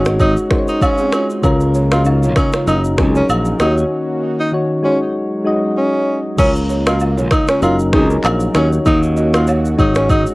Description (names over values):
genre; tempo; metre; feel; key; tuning
afrobeats; 97 BPM; 4/4; swing 55% on 16ths; Db major; A4 = 440 Hz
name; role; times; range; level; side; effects
breathy tenor saxophone; melody; 0.0-10.2 s; Db4 to F4; -19 LUFS; equal; none
soft electric-piano-like synth keys; accompaniment; 0.0-10.3 s; Db3 to Eb5; -18 LUFS; left 2 dB; chorus
warm analog pad; sustained chords; 0.4-10.3 s; Db3 to Bb4; -26 LUFS; equal; none
balafon; riff; 0.0-10.2 s; C4 to Eb5; -24 LUFS; right 3 dB; tape echo
modern bright fingered electric bass; bass; 0.0-10.2 s; Gb1 to Eb2; -17 LUFS; equal; none
afro-pop drum kit; drums; 0.1-10.3 s; crash cymbal, finger snaps, handclaps, kick drum, rim click, shaker; -18 LUFS; equal; cassette tape
agogo bells and woodblock; percussion; 0.2-10.3 s; none; -24 LUFS; right 1 dB; none
room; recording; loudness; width
light reverb; home recording on cassette; -13 LUFS; side -22 dB against mid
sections
0.0-6.4 A section; 6.4-10.3 B section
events
break 3.9-6.4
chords
0.0 Ab7sus4; 1.4 Db6; 2.7 Gb6; 3.6 Ebm7; 4.8 Ab7sus4; 6.4 Db6; 7.6 Gb6; 8.6 Ebm7; 9.8 Ab7sus4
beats
0.20 0.82 | 1.44 2.06 2.67 3.29 | 3.91 4.53 5.15 5.77 | 6.38 7.00 7.62 8.24 | 8.86 9.48 10.10